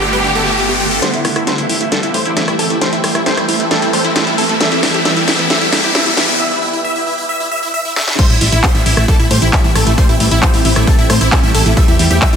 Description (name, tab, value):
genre	uplifting trance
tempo	134 BPM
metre	4/4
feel	straight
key	A minor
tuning	A4 = 440 Hz
part	big supersaw lead	melody	0.0-12.4 s	E4 to E5	-18 LUFS	equal	sidechain pumping, low-pass filter, analog delay
part	warm studio violin section	second line	0.0-0.9 s	G4	-19 LUFS	equal	vintage 12-bit sampler grit, ping-pong delay
part	wide unison pluck	arpeggios	0.0-12.4 s	G3 to A4	-22 LUFS	left 1 dB	phaser, sidechain pumping, analog delay
part	solid FM bass	bass	0.0-12.4 s	G1 to A2	-18 LUFS	equal	sidechain pumping, high-pass filter
part	riser	sound effects	0.0-6.4 s	none	-20 LUFS	left 1 dB	none
part	techno drum kit	drums	1.0-12.4 s	crash cymbal, handclaps, hi-hat, rim click, snare drum	-17 LUFS	equal	none
part	electronic kick drum	drums	8.2-12.3 s	none	-13 LUFS	equal	none
room	moderate lush hall reverb, RT60 2.0 s, digital ambience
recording	dreamy mix soaked in reverb, high-pass filter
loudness	-11 LUFS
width	side -7 dB against mid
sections	0.0-1.0 A section; 1.0-8.2 B section; 8.2-12.4 C section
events	riser 0.0-1.0, 1.0-6.4; filter sweep on synth pluck 0.0-1.0, 1.0-8.2; build-up 1.0-8.2; drum fill 1.0-6.4, 8.0; break 6.4-8.2; drop 8.2-12.4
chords	0.0 Gadd9; 1.0 Am7; 4.6 Em; 8.2 Am7; 11.8 Em